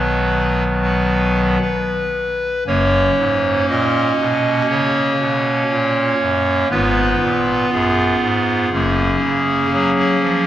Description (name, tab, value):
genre	classical, chorale-style piece for pipe organ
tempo	59 BPM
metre	4/4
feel	straight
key	F# major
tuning	A4 = 440 Hz
part	pipe organ, clarinet reed	solo	0.0-10.5 s	F#1 to D#5	-15 LUFS	equal	none
room	wet church reverb, RT60 2.8 s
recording	worn, warbling old tape, cassette tape, warbly pitch drift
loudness	-15 LUFS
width	side -12 dB against mid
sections	0.0-2.7 A section; 2.7-10.5 B section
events	none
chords	0.0 B; 2.7 F#; 6.7 Fdim/Ab; 8.7 F#